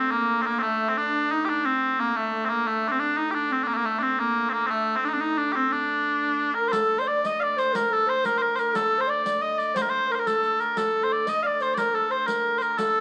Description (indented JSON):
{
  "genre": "medieval dance",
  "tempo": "119 BPM (dotted quarters)",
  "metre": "6/8",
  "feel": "straight",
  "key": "unclear",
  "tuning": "A4 = 440 Hz",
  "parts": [
    { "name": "mellow small bagpipes", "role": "melody", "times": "0.0-13.0 s", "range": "A3 to F5", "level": "-23 LUFS", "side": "equal", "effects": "none" },
    { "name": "breathy mellow bass recorder", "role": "second line", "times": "0.0-13.0 s", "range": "A3 to Eb5", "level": "-28 LUFS", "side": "equal", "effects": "none" },
    { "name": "dark hurdy-gurdy", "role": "drone", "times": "0.0-13.0 s", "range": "D3 to A3", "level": "-38 LUFS", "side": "equal", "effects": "none" },
    { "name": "riq", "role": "percussion", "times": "6.7-12.9 s", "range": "none", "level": "-37 LUFS", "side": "right 1 dB", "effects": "none" }
  ],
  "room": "moderate stone room reverb, RT60 1.1 s",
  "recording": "band playing live in one room, small speaker sound",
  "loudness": "-21 LUFS",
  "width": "side -28 dB against mid",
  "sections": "0.0-6.7 A section; 6.7-13.0 A section",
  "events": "none",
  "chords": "none",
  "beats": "0.13 | 0.64 1.15 | 1.66 2.17 | 2.67 3.18 | 3.69 4.20 | 4.70 5.21 | 5.72 6.22 | 6.73 7.24 | 7.74 8.25 | 8.75 9.26 | 9.76 10.26 | 10.77 11.27 | 11.77 12.28 | 12.78"
}